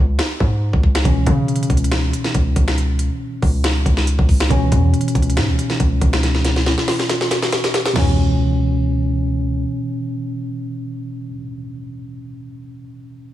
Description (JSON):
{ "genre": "hip hop, trap", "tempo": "139 BPM", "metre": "4/4", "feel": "half-time", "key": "C# minor", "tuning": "A4 = 440 Hz", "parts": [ { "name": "hard-hitting 808-style bass", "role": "bass", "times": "0.0-9.6 s", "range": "C#2 to C#3", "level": "-18 LUFS", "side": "equal", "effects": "none" }, { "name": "trap drum kit", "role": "drums", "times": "0.2-8.1 s", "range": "crash cymbal, finger snaps, hi-hat, kick drum, snare drum, toms", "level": "-18 LUFS", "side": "equal", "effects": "none" }, { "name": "tine electric piano", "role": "accompaniment", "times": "1.0-13.3 s", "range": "B2 to C#4", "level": "-22 LUFS", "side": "equal", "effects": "fast stereo tremolo, low-pass filter" } ], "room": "little or no reverb", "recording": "small room ambience", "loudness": "-15 LUFS", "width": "side -13 dB against mid", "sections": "0.0-8.0 A section; 8.0-11.4 B section", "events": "break 0.0-1.1; drum fill 6.2-8.0", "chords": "0.0 C#5; 1.1 C#m7", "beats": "0.19 0.62 | 1.05 1.48 1.91 2.35 | 2.78 3.21 3.64 4.07 | 4.50 4.94 5.37 5.80 | 6.23 6.66 7.09 7.53 | 7.96 8.39 8.82 9.25 | 9.68 10.12 10.55 10.98" }